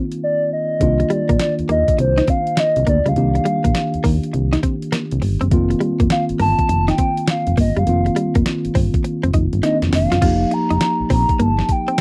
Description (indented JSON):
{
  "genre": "R&B, new jack swing",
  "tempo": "102 BPM",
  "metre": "4/4",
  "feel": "swing 65% on 16ths",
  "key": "unclear",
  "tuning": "A4 = 442 Hz",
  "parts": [
    { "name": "mellow tine electric piano", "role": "accompaniment", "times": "0.0-12.0 s", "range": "Eb3 to G4", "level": "-24 LUFS", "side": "equal", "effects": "none" },
    { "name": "direct-recorded clean electric guitar", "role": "riff", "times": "0.0-12.0 s", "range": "G3 to F4", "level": "-25 LUFS", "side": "equal", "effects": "analog chorus" },
    { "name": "clean 12-bit digital drum machine", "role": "drums", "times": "0.1-12.0 s", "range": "crash cymbal, hi-hat, kick drum, snare drum", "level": "-23 LUFS", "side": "equal", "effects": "none" },
    { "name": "hollow clarinet-like synth lead", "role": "melody", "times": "0.2-12.0 s", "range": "C5 to Bb5", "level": "-22 LUFS", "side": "equal", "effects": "chorus" },
    { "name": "solid FM bass", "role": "bass", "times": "0.8-11.6 s", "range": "F1 to Eb2", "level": "-21 LUFS", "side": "equal", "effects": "none" }
  ],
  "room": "light reverb",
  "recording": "dry, close 1970s-style studio recording",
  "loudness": "-18 LUFS",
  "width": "mono",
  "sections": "0.0-10.2 A section; 10.2-12.0 B section",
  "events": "silent gap 0.2-0.8; drum fill 9.6-10.2",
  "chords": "0.0 F7sus4; 0.8 Cm11; 5.5 F7sus4; 10.2 F9sus4"
}